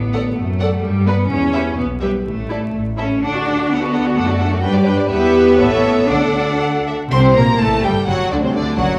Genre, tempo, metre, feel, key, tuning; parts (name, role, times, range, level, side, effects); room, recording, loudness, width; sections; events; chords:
quick classical-period movement for string orchestra; 126 BPM; 2/4; rubato; D major; A4 = 440 Hz
clear studio cello section; bass; 0.0-9.0 s; C2 to D4; -22 LUFS; equal
warm studio double bass section; bass; 0.0-9.0 s; F#1 to G2; -23 LUFS; equal
rich studio violin section; melody; 0.1-9.0 s; C5 to C6; -27 LUFS; equal
rich studio violin section; second line; 0.1-9.0 s; C4 to F#5; -25 LUFS; equal
rich studio viola section; accompaniment; 0.1-9.0 s; C3 to B4; -22 LUFS; equal
wet recital hall reverb, RT60 1.4 s; recorded in a church or concert hall, vinyl crackle; -16 LUFS; mono
0.0-7.1 A section; 7.1-9.0 B section
0.4 D/F# (rootless); 0.8 G; 1.3 Em; 2.3 A5; 2.7 A; 3.2 D; 4.2 D/F#; 4.7 G; 5.1 Em; 5.6 A; 6.1 D; 7.1 Gm; 8.1 D7/F#